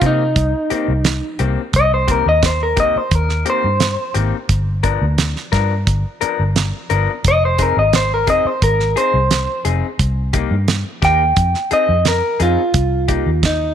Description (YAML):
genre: straight-eighth soul blues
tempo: 87 BPM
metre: 4/4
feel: straight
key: C minor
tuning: A4 = 441 Hz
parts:
  - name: electric guitar through a small old amp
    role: melody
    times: 0.0-13.7 s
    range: Eb4 to G5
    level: -16 LUFS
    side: equal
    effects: none
  - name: electric guitar through a small old amp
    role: stabs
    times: 0.0-13.3 s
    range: Eb3 to A#4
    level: -24 LUFS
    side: left 11 dB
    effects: none
  - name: vintage muted fingered electric bass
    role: bass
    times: 0.0-13.7 s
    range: F1 to C3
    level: -18 LUFS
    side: equal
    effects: none
  - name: damped 70s drum kit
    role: drums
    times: 0.0-13.6 s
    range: hi-hat, kick drum, snare drum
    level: -19 LUFS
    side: right 3 dB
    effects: none
room: small room ambience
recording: 1960s-style stereo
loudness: -14 LUFS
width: side -9 dB against mid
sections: 0.0-13.7 A section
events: none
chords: 0.0 Cm7; 4.5 G7#9; 7.2 Fm7; 10.0 Cm7; 11.4 Fm7; 12.7 Cm7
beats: 0.36 1.05 | 1.74 2.43 3.12 3.81 | 4.50 5.18 5.87 6.56 | 7.25 7.93 8.62 9.31 | 10.00 10.68 11.37 12.06 | 12.74 13.43